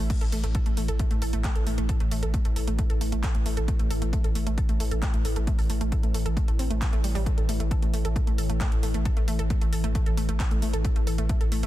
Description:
driving peak-time techno; 134 BPM; 4/4; straight; A4 = 439 Hz
analog pluck; riff; 0.0-11.7 s; G3 to A4; -34 LUFS; right 1 dB; chorus, sidechain pumping, digital delay
warm sub bass; bass; 0.0-11.7 s; A1; -28 LUFS; equal; overdrive, sidechain pumping, low-pass filter
deep dark ambient pad; drone; 0.0-11.7 s; A2 to E3; -34 LUFS; left 1 dB; chorus, built-in reverb, sidechain pumping
electronic kick drum; drums; 0.1-11.4 s; -25 LUFS; equal
techno drum kit; drums; 0.1-11.7 s; crash cymbal, handclaps, hi-hat; -38 LUFS; right 1 dB; overdrive
little or no reverb; dense, heavily limited modern master; -23 LUFS; side -14 dB against mid
0.0-11.7 A section
0.0 A5

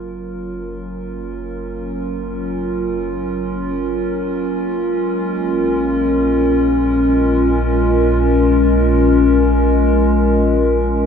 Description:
ambient; free time; A4 = 440 Hz
warbly tape-like pad; sustained chords; 0.0-11.1 s; Gb3 to Bb4; -16 LUFS; left 1 dB; chorus, built-in reverb
deep rumbling drone; bass; 0.0-11.1 s; Gb1 to Bb1; -21 LUFS; equal; built-in reverb
wet cathedral reverb, RT60 6.3 s; in a vast, echoing space; -14 LUFS; side -7 dB against mid
0.0-11.1 A section
fade-in on ambient pad 0.0-11.1; fade-in on synth drone 0.0-11.1
0.0 Gbmaj7; 4.8 Bbm7

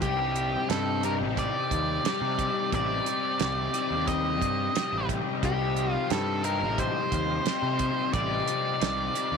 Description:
psychedelic rock; 89 BPM; 4/4; straight; C dorian; A4 = 440 Hz
octave-fuzz lead guitar; melody; 0.0-9.4 s; G4 to Eb5; -29 LUFS; right 1 dB; distortion, tape echo
combo organ; sustained chords; 0.0-9.4 s; G3 to G4; -36 LUFS; right 15 dB
crunchy overdriven guitar; riff; 0.0-9.4 s; C3 to G4; -30 LUFS; left 12 dB; rotary speaker
fuzz picked electric bass; bass; 0.0-9.4 s; A1 to C3; -32 LUFS; right 2 dB; overdrive
damped 70s drum kit; drums; 0.0-9.3 s; hi-hat, kick drum, snare drum; -31 LUFS; right 7 dB
light reverb, studio reverb; 1960s-style stereo with parts hard left and right; -25 LUFS; side -6 dB against mid
0.0-9.4 A section
0.0 Cmadd9

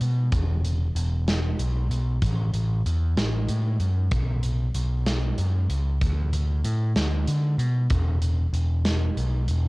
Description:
quiet-loud alternative rock; 63 BPM (dotted quarters); 6/8; straight; A4 = 440 Hz
overdriven picked electric bass; bass; 0.0-9.7 s; E1 to D3; -23 LUFS; equal
big rock drum kit; drums; 0.0-9.6 s; hi-hat, kick drum, snare drum; -29 LUFS; equal; cassette tape
little or no reverb; home recording on cassette; -22 LUFS; side -23 dB against mid
0.0-9.7 A section

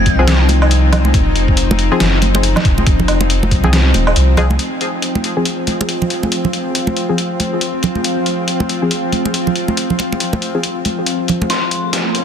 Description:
deep dubstep; 139 BPM; 4/4; swing 59% on 16ths, half-time; A4 = 441 Hz
dark detuned synth bell; melody; 0.0-0.3, 11.5-11.8 s; C6 to Ab6; -25 LUFS; left 1 dB; chorus, phaser, dub echo
bowed-like drone; sustained chords; 0.0-12.2 s; F3 to F4; -19 LUFS; left 2 dB; built-in reverb
soft dub sub bass; bass; 0.0-4.6 s; Eb1 to C2; -14 LUFS; equal
electronic kick drum; drums; 0.1-3.6 s; -14 LUFS; equal
trip hop sampler-style drum kit; drums; 0.1-12.2 s; hi-hat, snare drum, woodblock; -20 LUFS; left 1 dB; high-pass filter on hats, high-pass filter on perc, high-pass filter on snare, high-pass filter on room
filtered dub chord stab; stabs; 0.2-10.6 s; F3 to Ab4; -23 LUFS; left 3 dB; chorus, dub echo
congas; percussion; 0.5-11.5 s; -21 LUFS; right 3 dB; dub echo
riser; sound effects; 11.8-12.2 s; -22 LUFS; right 3 dB
light reverb, digital ambience; dense, heavily limited modern master; -13 LUFS; side -8 dB against mid
0.0-4.6 A section; 4.6-11.5 B section
drop 0.0-4.6; filter sweep on synth stab 4.6-11.5; drum fill 11.5-12.2; riser 11.8-12.2
0.0 F5

